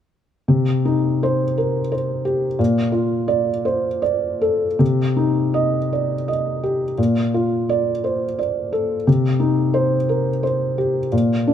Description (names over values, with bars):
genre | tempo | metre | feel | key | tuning
neoclassical minimalist piano | 50-60 BPM (dotted quarters) | 6/8 | rubato | C dorian | A4 = 439 Hz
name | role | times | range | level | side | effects
felt-muted upright piano | solo | 0.5-11.5 s | Bb2 to Eb5 | -17 LUFS | equal | none
room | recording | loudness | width
light reverb | close, detailed microphones | -17 LUFS | side -9 dB against mid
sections
0.5-4.8 A section; 4.8-11.5 B section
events
none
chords
0.5 Cm; 2.6 Bbmaj7; 4.8 Cm; 7.0 Bbmaj7; 9.1 Cm